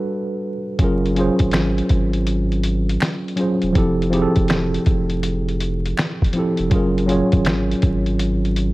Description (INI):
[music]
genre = lo-fi hip hop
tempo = 81 BPM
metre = 4/4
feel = swing 65% on 16ths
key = unclear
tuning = A4 = 439 Hz
[part]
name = mellow tine electric piano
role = accompaniment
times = 0.0-8.7 s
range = F3 to C#5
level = -20 LUFS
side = right 1 dB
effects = medium stereo tremolo, low-pass filter
[part]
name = saturated sub bass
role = bass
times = 0.8-8.7 s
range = E1 to G#1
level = -22 LUFS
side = equal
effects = none
[part]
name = lo-fi sampler-style drum kit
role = drums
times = 0.8-8.7 s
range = finger snaps, hi-hat, kick drum, snare drum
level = -20 LUFS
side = equal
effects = vintage 12-bit sampler grit
[part]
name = finger snaps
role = percussion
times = 1.5-7.7 s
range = none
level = -34 LUFS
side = equal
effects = none
[sound]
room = light reverb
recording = vinyl crackle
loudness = -17 LUFS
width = side -19 dB against mid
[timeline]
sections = 0.8-8.7 A section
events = break 0.0-0.8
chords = 0.0 Gmaj9; 0.8 F#maj9; 3.8 Fmaj9; 6.7 F#maj9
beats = 0.05 | 0.79 1.53 2.27 3.01 | 3.75 4.49 5.23 5.97 | 6.72 7.46 8.20